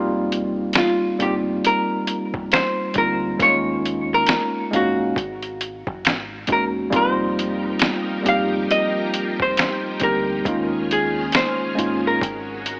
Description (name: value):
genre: lo-fi hip hop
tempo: 68 BPM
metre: 4/4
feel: swing 61% on 16ths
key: F minor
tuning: A4 = 440 Hz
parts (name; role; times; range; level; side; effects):
- tine electric piano; accompaniment; 0.0-12.2 s; G3 to F5; -22 LUFS; equal; medium stereo tremolo, cassette tape, low-pass filter
- deep dub fingered electric bass; bass; 0.0-12.8 s; E1 to Eb2; -34 LUFS; equal; none
- dusty soul sampler-style drum kit; drums; 0.3-12.8 s; finger snaps, hi-hat, kick drum, snare drum; -21 LUFS; equal; overdrive
- archtop guitar, miked and amplified; melody; 0.8-12.8 s; F4 to F5; -21 LUFS; equal; low-pass filter
- string machine, full ensemble; sustained chords; 6.9-12.8 s; Eb3 to Bb4; -29 LUFS; equal; ensemble chorus, low-pass filter
room: light reverb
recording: cassette tape, AM radio sound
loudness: -18 LUFS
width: side -32 dB against mid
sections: 0.0-12.8 A section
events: none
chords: 0.0 F9sus4; 3.4 Eb9sus4; 5.2 Ab9sus4; 6.9 F9sus4; 10.5 Eb9sus4; 12.2 Ab9sus4